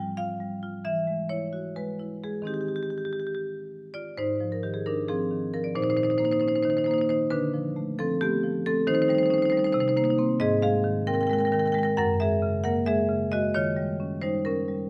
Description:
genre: classical, contemporary piece for solo marimba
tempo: 267 BPM (eighths)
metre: 7/8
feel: rubato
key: unclear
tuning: A4 = 440 Hz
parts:
  - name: marimba with medium hard mallets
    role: solo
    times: 0.0-14.9 s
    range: Gb2 to G5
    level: -26 LUFS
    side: equal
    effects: none
room: moderate recital hall reverb, RT60 1.5 s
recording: close, detailed microphones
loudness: -26 LUFS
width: mono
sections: 0.0-4.2 A section; 4.2-14.9 B section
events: none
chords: 0.0 Fsus2; 0.8 Eadd9; 2.5 Eb69; 4.2 Ab6; 5.8 Bbmadd9; 7.3 Dm6; 8.9 Eb6; 9.7 Cm7; 10.4 Ab6; 12.0 Gb9; 13.5 Eb9

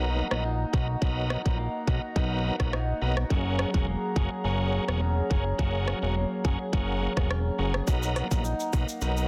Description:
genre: dancehall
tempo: 105 BPM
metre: 4/4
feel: straight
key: B major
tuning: A4 = 442 Hz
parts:
  - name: bright tonewheel organ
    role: accompaniment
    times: 0.0-9.3 s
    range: F#3 to A#4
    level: -36 LUFS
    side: equal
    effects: overdrive, chorus vibrato, stopped rotary speaker
  - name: hollow soft pad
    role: sustained chords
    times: 0.0-9.3 s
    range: G#4 to A#5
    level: -37 LUFS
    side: equal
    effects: chorus, sidechain pumping
  - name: clean electric guitar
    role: arpeggios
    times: 0.0-9.3 s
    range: F#3 to G#4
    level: -38 LUFS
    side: equal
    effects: subtle chorus, digital delay
  - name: fat analog bass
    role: bass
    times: 0.0-9.3 s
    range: E1 to B1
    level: -31 LUFS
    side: equal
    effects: none
  - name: island pop drum kit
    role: drums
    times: 0.3-9.3 s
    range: hi-hat, kick drum, rim click, shaker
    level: -30 LUFS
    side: equal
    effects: none
  - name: tube shaker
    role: percussion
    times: 7.9-9.3 s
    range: none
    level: -48 LUFS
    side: equal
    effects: none
room: little or no reverb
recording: dense, heavily limited modern master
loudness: -27 LUFS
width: mono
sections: 0.0-7.9 A section; 7.9-9.3 B section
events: none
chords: 0.0 Bmaj7; 3.3 F#add9; 7.9 Bmaj7

